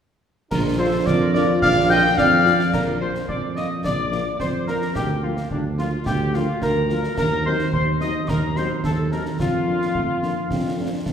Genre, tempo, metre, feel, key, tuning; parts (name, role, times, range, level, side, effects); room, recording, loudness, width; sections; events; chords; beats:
military-style march for wind band; 108 BPM; 2/4; straight; Bb major; A4 = 440 Hz
warm cornet; melody; 0.5-11.0 s; D4 to G5; -27 LUFS; right 1 dB
mellow wooden piccolo; second line; 0.5-11.0 s; D5 to G6; -25 LUFS; left 4 dB
warm woodwind section; second line; 0.5-11.0 s; D4 to Eb5; -27 LUFS; left 1 dB
mellow trombone section; sustained chords; 0.5-2.4 s; F3 to D4; -29 LUFS; right 2 dB
dark tuba; bass; 0.5-11.1 s; Bb1 to F2; -23 LUFS; right 2 dB
concert snare drum, clash cymbals and concert bass drum; drums; 0.5-11.1 s; -28 LUFS; equal
mellow French horn section; accompaniment; 0.8-10.9 s; F3 to F4; -31 LUFS; left 3 dB
warm euphonium; second line; 1.1-2.4, 9.9-11.1 s; A3 to F4; -27 LUFS; right 1 dB
wet scoring stage reverb, RT60 1.8 s; recorded in a church or concert hall; -18 LUFS; side -8 dB against mid
0.5-2.7 A section; 2.7-11.1 B section
0.5 Bb; 5.0 Bb/D; 7.2 Cdim/Eb; 9.4 Bb/F; 10.5 F
| 0.52 1.07 | 1.62 2.18 | 2.73 3.29 | 3.85 4.40 | 4.96 5.51 | 6.07 6.62 | 7.18 7.73 | 8.29 8.84 | 9.39 9.95 | 10.50 11.06